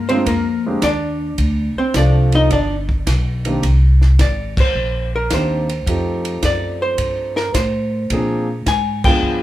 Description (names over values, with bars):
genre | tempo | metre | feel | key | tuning
jazz, small-group swing and bop | 107 BPM | 4/4 | swing 68% on 8ths | unclear | A4 = 440 Hz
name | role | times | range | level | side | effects
vintage hollow-body jazz guitar | melody | 0.0-9.4 s | Bb3 to Ab5 | -20 LUFS | equal | plate reverb
upright bass | bass | 0.0-9.4 s | G1 to Bb2 | -18 LUFS | equal | none
warm grand piano | accompaniment | 0.1-9.4 s | Eb3 to Ab4 | -22 LUFS | equal | none
compact cocktail drum kit | drums | 0.1-9.1 s | crash cymbal, hi-hat, kick drum, ride cymbal, snare drum | -22 LUFS | equal | none
room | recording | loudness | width
wet club ambience, RT60 0.5 s | heard from further back in the room | -15 LUFS | side -14 dB against mid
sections
0.0-9.4 A section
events
band accent 4.5, 8.9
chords
0.0 Bb9; 1.4 Dm7; 2.5 G; 3.6 Cm7; 5.9 F9; 8.1 Bb9